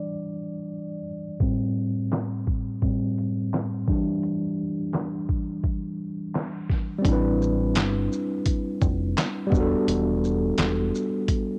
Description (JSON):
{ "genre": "lo-fi hip hop", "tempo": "85 BPM", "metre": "4/4", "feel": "swing 66% on 16ths", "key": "A minor", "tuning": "A4 = 440 Hz", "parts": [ { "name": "tine electric piano", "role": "accompaniment", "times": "0.0-11.6 s", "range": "A2 to D5", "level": "-28 LUFS", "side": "equal", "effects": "cassette tape" }, { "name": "lo-fi sampler-style drum kit", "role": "drums", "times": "1.4-11.5 s", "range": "handclaps, hi-hat, kick drum, shaker, snare drum", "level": "-28 LUFS", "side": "equal", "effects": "cassette tape" }, { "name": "deep dub fingered electric bass", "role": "bass", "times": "7.0-10.9 s", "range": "E1 to A1", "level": "-29 LUFS", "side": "equal", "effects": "none" } ], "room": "little or no reverb", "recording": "home recording on cassette, low-pass filter", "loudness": "-26 LUFS", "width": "mono", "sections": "0.0-7.0 A section; 7.0-11.6 B section", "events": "tine electric piano solo 0.0-7.0; filter sweep 0.0-7.0", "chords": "0.0 Em7; 1.4 Am7; 3.9 Em7; 7.0 Am11; 9.5 Em11" }